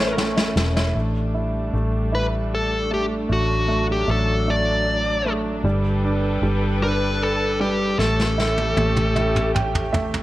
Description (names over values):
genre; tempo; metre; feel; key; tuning
six-eight pop ballad; 51 BPM (dotted quarters); 6/8; straight; unclear; A4 = 440 Hz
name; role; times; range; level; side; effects
dark smooth lead guitar; melody; 0.0-9.5 s; F#4 to D5; -24 LUFS; left 1 dB; overdrive, slapback echo
warm French horn section; second line; 0.0-0.9 s; C#4 to E4; -38 LUFS; left 3 dB; none
clear upright piano; accompaniment; 0.0-10.2 s; G3 to G5; -25 LUFS; right 2 dB; none
rich studio string section; sustained chords; 0.0-10.2 s; E3 to B4; -28 LUFS; equal; none
vintage muted fingered electric bass; bass; 0.0-10.2 s; E1 to A1; -24 LUFS; equal; none
vintage brush drum kit; drums; 0.2-0.9, 8.0-10.2 s; snare drum, toms; -24 LUFS; left 1 dB; none
room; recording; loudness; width
light reverb, small room ambience; none; -19 LUFS; side -16 dB against mid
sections
1.0-10.2 A section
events
drum fill 0.0-1.0, 8.0-10.2; upright piano fill 9.2-10.2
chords
0.0 A; 1.0 A7sus4; 3.3 D/A; 5.6 Gadd9; 8.0 A7